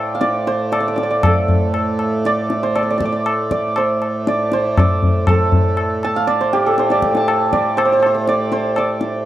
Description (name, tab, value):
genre	indian classical, Hindustani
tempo	119 BPM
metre	4/4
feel	straight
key	A raga malkauns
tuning	A4 = 440 Hz
part	santur	melody	0.0-9.3 s	G4 to A5	-17 LUFS	right 2 dB	none
part	hand-pumped harmonium	drone	0.0-9.3 s	A2 to A3	-23 LUFS	right 2 dB	none
part	tabla	percussion	0.2-9.2 s	none	-19 LUFS	left 2 dB	none
room	light reverb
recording	dry, close 1970s-style studio recording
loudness	-14 LUFS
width	side -13 dB against mid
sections	0.0-9.3 A section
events	speeding up 0.0-9.3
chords	none